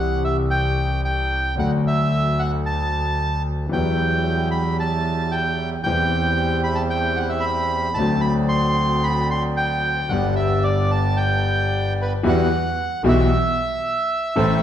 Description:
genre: tango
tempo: 113 BPM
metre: 4/4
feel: rubato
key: G major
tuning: A4 = 440 Hz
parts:
  - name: bandoneon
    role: melody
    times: 0.0-14.6 s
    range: B4 to C6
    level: -23 LUFS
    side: right 1 dB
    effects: none
  - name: warm concert grand piano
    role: accompaniment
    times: 0.0-14.6 s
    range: G1 to A4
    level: -22 LUFS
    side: left 2 dB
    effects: none
  - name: clear double bass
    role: bass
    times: 0.0-14.6 s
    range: G1 to E2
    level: -25 LUFS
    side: right 2 dB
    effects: none
  - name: bandoneon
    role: stabs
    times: 3.7-14.6 s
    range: F#3 to A4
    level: -29 LUFS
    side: right 2 dB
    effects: none
room: wet recital hall reverb, RT60 1.5 s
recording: recorded in a church or concert hall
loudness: -18 LUFS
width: side -10 dB against mid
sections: 0.0-12.2 A section; 12.2-14.6 B section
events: none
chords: 0.0 C; 1.6 D; 3.7 Emadd9; 5.9 C/E; 8.0 D7; 10.1 G; 12.2 Emadd9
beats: 0.53 1.06 | 1.59 2.12 2.66 3.19 | 3.73 4.26 4.80 5.33 | 5.87 6.40 6.93 7.46 | 7.99 8.52 9.04 9.57 | 10.10 10.63 11.17 11.70 | 12.24 12.77 13.31 13.84 | 14.37

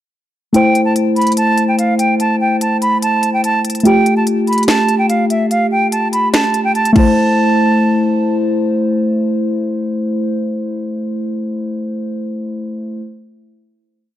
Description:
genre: hip hop, trap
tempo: 145 BPM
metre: 4/4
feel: half-time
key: A minor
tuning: A4 = 440 Hz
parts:
  - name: reedy concert flute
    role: melody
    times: 0.5-8.4 s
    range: E5 to B5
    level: -16 LUFS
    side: right 2 dB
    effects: none
  - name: muted felt-like synth keys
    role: accompaniment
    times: 0.5-13.0 s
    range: A3 to C5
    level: -15 LUFS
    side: left 1 dB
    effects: chorus
  - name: trap drum kit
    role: drums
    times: 0.5-7.1 s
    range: crash cymbal, finger snaps, hi-hat, kick drum, snare drum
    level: -19 LUFS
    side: equal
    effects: none
room: light reverb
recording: dark, warm production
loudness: -13 LUFS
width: side -12 dB against mid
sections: 0.5-7.2 breakdown; 7.2-10.5 final hit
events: none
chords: 0.5 Am; 3.9 Fadd9; 7.0 Am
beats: | 0.54 0.96 1.37 1.78 | 2.20 2.61 3.03 3.44 | 3.85 4.27 4.68 5.09 | 5.51 5.92 6.34 6.75 | 7.16 7.58 7.99 8.40 | 8.82 9.23 9.65 10.06

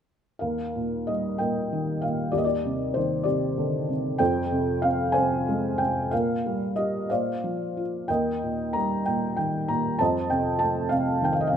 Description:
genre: classical, lyrical solo piano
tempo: 63 BPM (dotted quarters)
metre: 6/8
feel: uneven beats, rubato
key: Eb major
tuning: A4 = 442 Hz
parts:
  - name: felt-muted upright piano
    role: solo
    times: 0.4-11.6 s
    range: Eb2 to Bb5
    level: -23 LUFS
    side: equal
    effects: none
room: moderate recital hall reverb, RT60 1.6 s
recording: none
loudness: -23 LUFS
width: side -8 dB against mid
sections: 0.4-11.6 A section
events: none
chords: 0.4 Ebadd9; 2.3 Cmadd9/Eb; 4.2 Fmadd9; 6.1 Ebadd9/Bb; 7.1 Bbadd9; 8.1 Eb; 10.0 F7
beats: | 0.40 1.39 | 2.33 3.26 | 4.20 5.15 | 6.12 7.10 | 8.08 9.06 | 9.99 10.91

